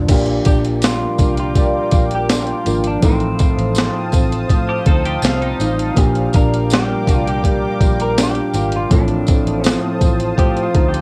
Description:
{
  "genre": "indie pop, bedroom pop",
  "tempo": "82 BPM",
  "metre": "4/4",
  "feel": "straight",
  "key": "Bb major",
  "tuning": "A4 = 440 Hz",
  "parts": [
    { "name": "flamenco guitar", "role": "accompaniment", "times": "0.0-11.0 s", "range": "A2 to F4", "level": "-23 LUFS", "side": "equal", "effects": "subtle chorus, vibrato effect, cassette tape" },
    { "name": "reed electric piano", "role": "accompaniment", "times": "0.0-11.0 s", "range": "F3 to Bb4", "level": "-27 LUFS", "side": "equal", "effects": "cassette tape" },
    { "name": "vintage muted fingered electric bass", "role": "bass", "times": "0.0-11.0 s", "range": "Ab1 to A2", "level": "-24 LUFS", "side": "equal", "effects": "none" },
    { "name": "lush unison pad", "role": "sustained chords", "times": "0.7-11.0 s", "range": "Bb4 to Eb6", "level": "-28 LUFS", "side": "equal", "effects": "chorus, cassette tape" },
    { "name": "boom bap sampler-style drum kit", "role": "drums", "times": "0.1-11.0 s", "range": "crash cymbal, hi-hat, kick drum, snare drum", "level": "-18 LUFS", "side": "equal", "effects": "cassette tape" },
    { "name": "tambourine", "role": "percussion", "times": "0.1-10.2 s", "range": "none", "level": "-34 LUFS", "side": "equal", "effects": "none" },
    { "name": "electric guitar through a small old amp", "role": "melody", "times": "0.5-11.0 s", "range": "C4 to Bb4", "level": "-26 LUFS", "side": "equal", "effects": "subtle chorus" },
    { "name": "twelve-string electric guitar", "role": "second line", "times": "4.7-5.9 s", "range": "G3 to A4", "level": "-28 LUFS", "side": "equal", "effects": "lush chorus, cassette tape, tape echo" }
  ],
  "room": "light reverb",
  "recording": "home recording on cassette",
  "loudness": "-16 LUFS",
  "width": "mono",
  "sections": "0.1-11.0 A section",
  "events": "clean electric guitar solo 0.1-11.0",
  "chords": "0.1 Bb6; 3.0 F7/A; 6.0 Bb6; 8.9 F7/A",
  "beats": "| 0.09 0.83 1.56 2.30 | 3.03 3.77 4.50 5.24 | 5.97 6.71 7.44 8.18 | 8.91 9.65 10.38"
}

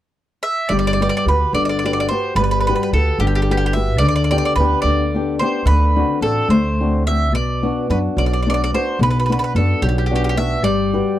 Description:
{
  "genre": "italian folk, Italian serenade",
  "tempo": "73 BPM (dotted quarters)",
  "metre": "6/8",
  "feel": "rubato",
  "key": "G major",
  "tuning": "A4 = 440 Hz",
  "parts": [
    { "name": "mandolin", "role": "melody", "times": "0.4-11.2 s", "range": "G4 to E5", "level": "-20 LUFS", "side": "right 2 dB", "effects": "none" },
    { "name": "flamenco guitar", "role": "accompaniment", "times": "0.7-11.2 s", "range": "B2 to B4", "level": "-20 LUFS", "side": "left 3 dB", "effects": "none" },
    { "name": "upright bass", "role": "bass", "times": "0.7-11.0 s", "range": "G1 to F#2", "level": "-19 LUFS", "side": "right 1 dB", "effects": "tube saturation" }
  ],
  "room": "little or no reverb",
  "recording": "dry, close 1970s-style studio recording",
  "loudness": "-15 LUFS",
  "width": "side -12 dB against mid",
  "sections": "0.7-11.2 A section",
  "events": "none",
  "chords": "0.0 N.C.; 0.7 Gmaj7; 4.0 G/D; 5.7 D7; 7.3 Bm; 10.6 Gmaj7",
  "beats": "| 0.70 1.54 | 2.37 3.19 | 4.00 4.83 | 5.65 6.49 | 7.33 8.17 | 8.99 9.82 | 10.64"
}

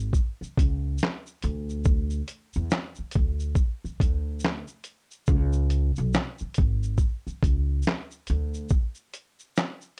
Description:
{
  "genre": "lo-fi hip hop",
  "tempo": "70 BPM",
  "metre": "4/4",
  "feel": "swing 61% on 16ths",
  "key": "C# phrygian",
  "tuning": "A4 = 440 Hz",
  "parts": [
    { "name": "upright bass", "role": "bass", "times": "0.0-8.7 s", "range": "G#1 to E2", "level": "-29 LUFS", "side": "equal", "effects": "none" },
    { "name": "lo-fi sampler-style drum kit", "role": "drums", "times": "0.1-10.0 s", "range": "handclaps, hi-hat, kick drum, shaker, snare drum", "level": "-27 LUFS", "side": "equal", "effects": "none" }
  ],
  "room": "little or no reverb",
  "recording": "dark, warm production",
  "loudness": "-27 LUFS",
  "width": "mono",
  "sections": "0.0-10.0 A section",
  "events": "break 8.7-10.0",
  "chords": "none",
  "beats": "0.14 0.99 | 1.85 2.71 3.57 4.42 | 5.28 6.14 7.00 7.85 | 8.71 9.57"
}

